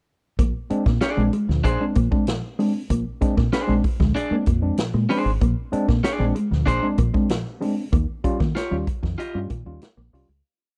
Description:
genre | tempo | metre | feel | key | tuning
funk | 95 BPM | 4/4 | straight | Bb mixolydian | A4 = 440 Hz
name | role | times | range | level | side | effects
mellow electric guitar | riff | 0.4-10.3 s | F3 to Bb3 | -29 LUFS | equal | none
tine electric piano | stabs | 0.4-10.3 s | Bb2 to F4 | -29 LUFS | equal | none
deep dub fingered electric bass | bass | 0.4-10.4 s | Ab1 to Eb3 | -26 LUFS | equal | none
vintage drum kit | drums | 0.4-10.3 s | hi-hat, kick drum, snare drum | -26 LUFS | equal | vintage 12-bit sampler grit
electric guitar at the edge of break-up | accompaniment | 1.0-9.4 s | D4 to Eb5 | -28 LUFS | equal | none
room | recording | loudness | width
studio reverb | dry, close 1970s-style studio recording | -22 LUFS | mono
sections
0.4-10.5 groove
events
fade-out 7.9-10.5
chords
0.4 Bb9; 7.9 Eb9

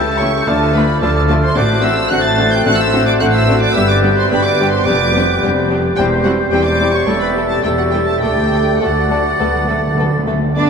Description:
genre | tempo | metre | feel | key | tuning
quick classical-period movement for symphony orchestra | 101-111 BPM | 4/4 | rubato | unclear | A4 = 440 Hz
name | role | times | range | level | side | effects
warm studio violin section | melody | 0.0-10.7 s | F#5 to A6 | -21 LUFS | right 1 dB | none
clear clarinet | second line | 0.0-10.7 s | F#4 to B5 | -23 LUFS | right 4 dB | none
silver concert flute | second line | 0.0-10.6 s | D5 to A6 | -23 LUFS | left 4 dB | none
warm oboe | second line | 0.0-10.7 s | B4 to E5 | -22 LUFS | right 3 dB | none
mellow bassoon | accompaniment | 0.0-10.7 s | D3 to D4 | -22 LUFS | left 3 dB | none
warm French horn section | sustained chords | 0.0-10.3 s | A3 to A4 | -21 LUFS | equal | stereo widening
rich chamber cello section | bass | 0.0-10.7 s | D2 to D4 | -21 LUFS | right 1 dB | none
rich chamber double bass section | bass | 0.0-10.7 s | E1 to G2 | -20 LUFS | equal | none
dark chamber violin section | second line | 0.2-10.7 s | D4 to D5 | -24 LUFS | left 1 dB | none
rich chamber viola section | accompaniment | 0.2-10.7 s | D3 to C4 | -22 LUFS | left 2 dB | none
timpani | percussion | 0.5-1.3, 8.2-10.5 s | D3 | -23 LUFS | right 1 dB | none
room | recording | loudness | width
wet cathedral reverb, RT60 6.9 s | in a vast, echoing space | -12 LUFS | side -6 dB against mid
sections
0.0-10.6 A section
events
timpani fill 8.2-10.6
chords
0.5 Dm; 1.6 D7/A; 3.8 G; 4.9 G7/F; 6.0 C/E; 7.1 A5/E; 8.2 D

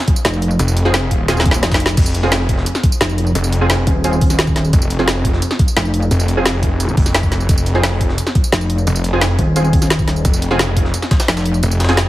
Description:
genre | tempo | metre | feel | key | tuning
dark technical drum and bass | 174 BPM | 4/4 | straight | F minor | A4 = 441 Hz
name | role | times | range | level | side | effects
drum and bass drum kit | drums | 0.1-12.0 s | crash cymbal, hi-hat, snare drum, tambourine | -20 LUFS | equal | overdrive, studio reverb
electronic kick drum | drums | 0.1-11.2 s | none | -15 LUFS | equal | overdrive, studio reverb
jungle sampler-style drum kit | drums | 0.1-12.1 s | hi-hat, snare drum | -28 LUFS | equal | none
pulsing pluck wobble bass | bass | 0.2-6.1, 8.5-11.6 s | Eb1 to F1 | -16 LUFS | equal | chorus
snarling distorted saw bass | bass | 0.6-12.1 s | Eb1 to F1 | -17 LUFS | equal | distortion, tube saturation, sidechain pumping
orchestra-hit-like synth stab | stabs | 0.9-12.0 s | C4 to Ab4 | -22 LUFS | right 1 dB | built-in reverb, cassette tape, dub echo
room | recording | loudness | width
light reverb, digital ambience | heavily compressed radio sound | -13 LUFS | side -16 dB against mid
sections
0.0-12.1 A section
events
drum fill 1.3-2.0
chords
0.0 Fm

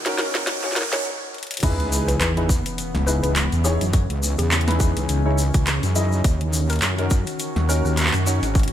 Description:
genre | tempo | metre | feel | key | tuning
glitch hop | 104 BPM | 4/4 | swing 57% on 16ths | C# dorian | A4 = 441 Hz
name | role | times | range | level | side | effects
warbly tape-like pad | sustained chords | 0.0-8.7 s | D#2 to F#4 | -29 LUFS | left 1 dB | chorus, built-in reverb, sidechain pumping
riser and sub drop | sound effects | 0.0-3.9 s | none | -29 LUFS | right 1 dB | none
warm concert grand piano | stabs | 0.1-8.4 s | C#4 to D#5 | -28 LUFS | equal | analog chorus, sidechain pumping, ping-pong delay
drum and bass drum kit | drums | 0.1-8.7 s | crash cymbal, handclaps, hi-hat, snare drum | -26 LUFS | equal | overdrive, studio reverb
woody wave-folded pluck | melody | 0.2-8.2 s | G#4 to B4 | -33 LUFS | left 3 dB | chorus, ping-pong delay
wobble bass | bass | 1.6-8.7 s | G#1 to F#2 | -21 LUFS | equal | chorus
electronic kick drum | drums | 1.6-8.7 s | none | -19 LUFS | equal | overdrive, studio reverb
tube shaker | percussion | 1.6-8.7 s | none | -30 LUFS | left 3 dB | none
room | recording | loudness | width
light reverb | bright 1980s-style digital production, high-pass filter | -18 LUFS | side -11 dB against mid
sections
0.0-1.6 A section; 1.6-8.7 B section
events
build-up 0.0-1.6; drum fill 0.0-1.1, 1.3; riser 0.0-1.1; filter sweep on ambient pad 0.0-1.6; filter sweep 0.0-1.6; stop 1.1-1.6; drop 1.6-8.7; impact 1.6-3.9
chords
0.0 D#m7; 1.6 C#m7; 6.2 D#m7

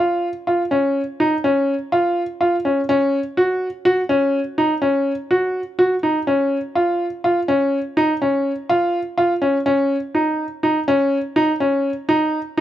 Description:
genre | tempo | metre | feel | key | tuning
progressive instrumental, progressive | 248 BPM (eighths) | 7/8 | straight | unclear | A4 = 439 Hz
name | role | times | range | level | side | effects
bright baby grand piano | solo | 0.0-12.6 s | Db4 to Gb4 | -17 LUFS | equal | none
room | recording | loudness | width
small room ambience | dry, close 1970s-style studio recording | -17 LUFS | side -12 dB against mid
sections
0.0-12.6 A section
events
none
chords
none

